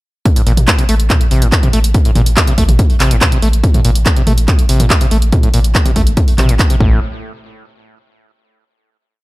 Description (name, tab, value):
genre	driving peak-time techno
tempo	142 BPM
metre	4/4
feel	straight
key	A phrygian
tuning	A4 = 440 Hz
part	overdriven acid bass	riff	0.3-7.0 s	A2 to A3	-18 LUFS	equal	sidechain pumping, digital delay
part	electronic kick drum	drums	0.3-6.9 s	none	-13 LUFS	equal	none
part	techno drum kit	drums	0.3-6.8 s	handclaps, hi-hat, toms	-16 LUFS	right 1 dB	sidechain pumping on hats, sidechain pumping on toms
part	saturated sub bass	bass	0.5-7.0 s	A1	-13 LUFS	equal	sidechain pumping, low-pass filter
room	little or no reverb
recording	none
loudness	-9 LUFS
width	side -20 dB against mid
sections	0.3-7.0 drop; 7.0-8.7 final hit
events	drop 0.3-7.0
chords	0.3 Am; 6.8 N.C.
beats	| 0.26 0.68 1.10 1.52 | 1.95 2.37 2.79 3.21 | 3.64 4.06 4.48 4.90 | 5.33 5.75 6.17 6.59